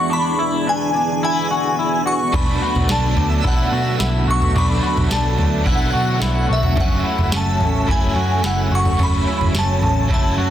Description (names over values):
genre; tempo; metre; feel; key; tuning
dream pop; 108 BPM; 4/4; straight; unclear; A4 = 440 Hz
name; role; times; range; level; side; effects
shimmering bell with halo; melody; 0.0-10.5 s; E5 to C#6; -22 LUFS; equal; ensemble chorus, digital delay
string machine, cellos; sustained chords; 0.0-10.5 s; E3 to E5; -24 LUFS; equal; ensemble chorus
electric guitar at the edge of break-up; arpeggios; 0.0-10.5 s; C#4 to F#4; -25 LUFS; left 4 dB; lush chorus, digital delay
biting overdriven guitar; accompaniment; 2.3-10.5 s; F#2 to D4; -26 LUFS; right 4 dB; tremolo, wide subtle chorus
vintage muted picked electric bass; bass; 2.3-10.5 s; F#1 to B2; -20 LUFS; equal; none
booming analog drum machine; drums; 2.3-10.3 s; kick drum, snare drum, toms; -21 LUFS; right 1 dB; none
twinkling granular texture; texture; 3.3-7.9 s; E5 to F#5; -33 LUFS; equal; built-in reverb, digital delay
room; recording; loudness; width
moderate recital hall reverb, RT60 1.4 s, digital ambience; dense, heavily limited modern master; -15 LUFS; side -11 dB against mid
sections
0.0-10.5 A section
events
none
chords
0.0 E7; 2.3 Bm7; 6.8 F#m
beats
| 0.11 0.66 1.22 1.77 | 2.33 2.89 3.44 4.00 | 4.55 5.11 5.66 6.22 | 6.78 7.33 7.89 8.44 | 9.00 9.55 10.11